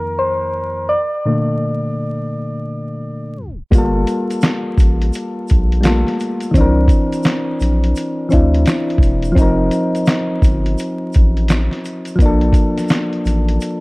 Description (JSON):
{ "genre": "lo-fi hip hop", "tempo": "85 BPM", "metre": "4/4", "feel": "swing 63% on 16ths", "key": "G minor", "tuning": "A4 = 445 Hz", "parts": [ { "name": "soft electric-piano-like synth keys", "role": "accompaniment", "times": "0.0-13.8 s", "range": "F2 to D5", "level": "-18 LUFS", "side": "left 1 dB", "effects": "chorus, cassette tape, low-pass filter" }, { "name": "saturated sub bass", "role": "bass", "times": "3.7-13.6 s", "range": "E1 to D2", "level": "-16 LUFS", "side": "equal", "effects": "none" }, { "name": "lo-fi sampler-style drum kit", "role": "drums", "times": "3.7-13.8 s", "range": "handclaps, hi-hat, kick drum, snare drum", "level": "-15 LUFS", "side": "equal", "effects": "none" }, { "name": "tube shaker", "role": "percussion", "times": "3.7-13.8 s", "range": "none", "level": "-41 LUFS", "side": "right 7 dB", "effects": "none" } ], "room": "light reverb", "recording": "dark, warm production, vinyl crackle, tape stop", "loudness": "-14 LUFS", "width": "side -24 dB against mid", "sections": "0.0-3.7 A section; 3.7-13.8 B section", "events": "synth keys solo 0.0-3.7; tape stop 3.4-3.7", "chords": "0.0 F7sus4; 0.9 Bbmaj7; 3.7 Gm9; 6.5 C9; 9.4 F7sus4; 12.2 Bbmaj7", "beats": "0.19 | 0.90 1.60 2.31 3.01 | 3.72 4.42 5.13 5.84 | 6.54 7.25 7.96 8.66 | 9.37 10.07 10.78 11.48 | 12.19 12.90 13.60" }